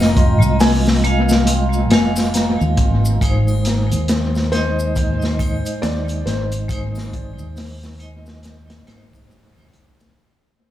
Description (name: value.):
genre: trip hop.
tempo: 69 BPM.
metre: 4/4.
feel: swing 60% on 16ths.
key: unclear.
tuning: A4 = 443 Hz.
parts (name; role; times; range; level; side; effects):
felt-muted upright piano; melody; 0.0-8.8 s; C5 to Bb5; -28 LUFS; left 1 dB; dub echo.
vibraphone with hard mallets; accompaniment; 0.0-10.2 s; Ab3 to F5; -22 LUFS; right 2 dB; tremolo, tape echo.
fingered electric bass; bass; 0.0-10.1 s; F1 to Eb2; -19 LUFS; equal; none.
crunchy breakbeat drum kit; drums; 0.0-10.2 s; hi-hat, kick drum, snare drum; -19 LUFS; left 1 dB; analog delay.
maracas and triangle; percussion; 0.0-10.1 s; none; -35 LUFS; left 3 dB; none.
room: small room ambience.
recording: echo-heavy mix, studio ambience.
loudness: -15 LUFS.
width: side -12 dB against mid.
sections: 0.0-10.2 A section.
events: fade-out 0.9-10.2.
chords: 0.0 Fm7; 3.2 Ab.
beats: 0.61 1.48 2.35 | 3.22 4.09 4.96 5.83 | 6.70 7.57 8.44 9.30.